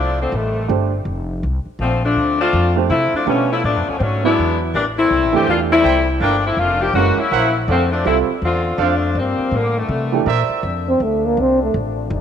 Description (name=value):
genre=jazz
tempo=163 BPM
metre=4/4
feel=swing 63% on 8ths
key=F major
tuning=A4 = 440 Hz
part: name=warm saxophone section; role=melody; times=0.0-10.3 s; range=C3 to G4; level=-17 LUFS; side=left 3 dB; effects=none
part: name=upright bass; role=bass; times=0.0-12.2 s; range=F1 to C3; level=-21 LUFS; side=equal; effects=none
part: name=warm upright piano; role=accompaniment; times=0.7-10.3 s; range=E3 to C5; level=-22 LUFS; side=right 11 dB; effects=none
part: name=warm trumpet section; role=stabs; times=5.8-10.6 s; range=A4 to G5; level=-23 LUFS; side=right 8 dB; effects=none
part: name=bright trombone section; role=sustained chords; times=10.6-12.2 s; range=C3 to Eb4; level=-27 LUFS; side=left 12 dB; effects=none
part: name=breathy trombone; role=melody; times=10.9-11.7 s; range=A3 to C4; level=-17 LUFS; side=right 1 dB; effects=none
room=moderate plate reverb, RT60 2.5 s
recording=1960s-style stereo with parts hard left and right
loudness=-15 LUFS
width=side -8 dB against mid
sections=0.0-10.6 A section; 10.6-12.2 B section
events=trombone solo 10.6-12.2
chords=0.3 F13; 1.8 Bbmaj9; 3.3 Bm7b5; 4.0 E7; 4.7 Am7; 6.2 Gm9; 7.0 Gb7#11; 7.7 F6; 9.2 Gm7; 9.9 C9; 10.6 F6